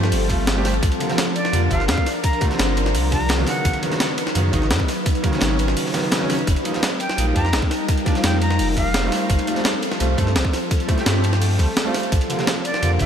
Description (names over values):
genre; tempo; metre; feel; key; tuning
liquid drum and bass; 170 BPM; 4/4; straight; unclear; A4 = 440 Hz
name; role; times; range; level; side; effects
clear baby grand piano; accompaniment; 0.0-13.1 s; C3 to A4; -25 LUFS; right 2 dB; vintage 12-bit sampler grit, analog delay
glassy FM pad; sustained chords; 0.0-13.1 s; F3 to Cb5; -25 LUFS; left 2 dB; ensemble chorus, built-in reverb, sidechain pumping
warm sub bass; bass; 0.0-13.1 s; F1 to G2; -21 LUFS; equal; none
breakbeat sampler-style drum kit; drums; 0.0-13.1 s; hi-hat, snare drum; -24 LUFS; equal; none
crunchy breakbeat drum kit; drums; 0.1-13.1 s; hi-hat, ride cymbal, snare drum; -30 LUFS; equal; high-pass filter on cymbals, high-pass filter on hats, high-pass filter on snare, high-pass filter on room
electronic kick drum; drums; 0.3-13.1 s; none; -21 LUFS; equal; none
bright reedy silver concert flute; melody; 1.4-3.8, 7.0-9.1, 12.7-13.1 s; D5 to Bb5; -27 LUFS; right 1 dB; diffuse ambient delay
room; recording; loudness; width
moderate huge ambient reverb, RT60 4.8 s; dreamy mix soaked in reverb; -17 LUFS; side -8 dB against mid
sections
0.0-13.1 A section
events
none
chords
0.0 G9sus4; 0.8 C9sus4; 3.5 Db9sus4; 6.5 F9sus4; 9.1 G9sus4; 12.1 C9sus4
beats
0.12 0.47 | 0.83 1.18 1.53 1.89 | 2.24 2.59 2.94 3.30 | 3.65 4.00 4.36 4.71 | 5.06 5.42 5.77 6.12 | 6.47 6.83 7.18 7.53 | 7.89 8.24 8.59 8.94 | 9.30 9.65 10.00 10.36 | 10.71 11.06 11.41 11.77 | 12.12 12.47 12.83